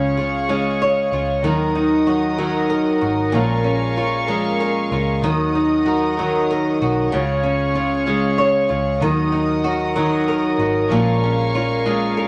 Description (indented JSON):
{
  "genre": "six-eight pop ballad",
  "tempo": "63 BPM (dotted quarters)",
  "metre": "6/8",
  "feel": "straight",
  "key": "Eb minor",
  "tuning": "A4 = 439 Hz",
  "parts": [
    { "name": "flamenco guitar", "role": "accompaniment", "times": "0.0-12.3 s", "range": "Bb2 to Db5", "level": "-22 LUFS", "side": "equal", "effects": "none" },
    { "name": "warm studio string section", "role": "sustained chords", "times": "0.0-12.3 s", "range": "Ab4 to Eb6", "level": "-26 LUFS", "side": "equal", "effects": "none" },
    { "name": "picked steel-string acoustic guitar", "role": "arpeggios", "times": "0.0-12.3 s", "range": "Bb2 to Db5", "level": "-25 LUFS", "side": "equal", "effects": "none" },
    { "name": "vintage muted fingered electric bass", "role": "bass", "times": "0.0-12.3 s", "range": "Ab1 to Eb2", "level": "-29 LUFS", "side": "equal", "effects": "none" }
  ],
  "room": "moderate studio ambience, RT60 0.5 s",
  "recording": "none",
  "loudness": "-19 LUFS",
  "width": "mono",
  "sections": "0.0-12.3 A section",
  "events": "none",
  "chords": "0.0 Db; 1.4 Ebm; 3.3 Bbm7; 5.2 Ebm; 7.1 Db; 9.0 Ebm; 10.9 Bbm7"
}